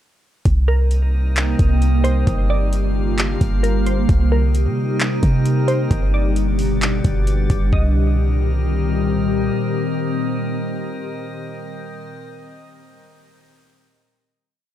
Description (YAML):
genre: hip hop, atmospheric cloud-rap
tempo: 132 BPM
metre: 4/4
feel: half-time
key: C minor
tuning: A4 = 441 Hz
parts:
  - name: glassy FM pad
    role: sustained chords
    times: 1.0-12.1 s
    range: Bb2 to G4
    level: -22 LUFS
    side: left 1 dB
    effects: ensemble chorus, built-in reverb, phaser, sidechain pumping
  - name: clean 808-style bass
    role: bass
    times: 0.5-9.5 s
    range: G1 to C3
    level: -18 LUFS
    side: equal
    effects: none
  - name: smooth R&B drum kit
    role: drums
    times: 0.5-7.8 s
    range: handclaps, hi-hat, kick drum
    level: -20 LUFS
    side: equal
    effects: none
  - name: drifting glass-harmonics texture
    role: texture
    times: 0.8-12.1 s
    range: Bb3 to F5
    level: -31 LUFS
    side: equal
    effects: chorus, built-in reverb
  - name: glassy wavetable pluck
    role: melody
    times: 0.7-9.1 s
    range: Bb4 to Eb5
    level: -27 LUFS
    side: right 1 dB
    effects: chorus, low-pass filter, tape echo
room: digital ambience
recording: dry, gritty hardware recording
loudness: -16 LUFS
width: side -11 dB against mid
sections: 0.5-7.7 verse; 7.7-11.4 final chord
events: none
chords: 0.5 Cm7; 2.3 Gm7; 4.1 Cm7; 5.9 G; 7.7 Cm7